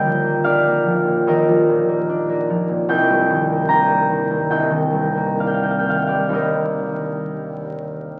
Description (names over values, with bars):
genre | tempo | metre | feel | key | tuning
classical, solo harp piece | 63-76 BPM | 4/4 | rubato | unclear | A4 = 440 Hz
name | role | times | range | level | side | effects
concert harp | solo | 0.0-8.2 s | C2 to Bb5 | -19 LUFS | equal | none
room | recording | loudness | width
wet cathedral reverb, RT60 6.2 s | very old 78 rpm record, vinyl crackle, faint mains hum | -19 LUFS | mono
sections
0.0-8.2 A section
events
none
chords
0.0 Ebmaj9; 2.9 Cm9; 6.3 Ebmaj7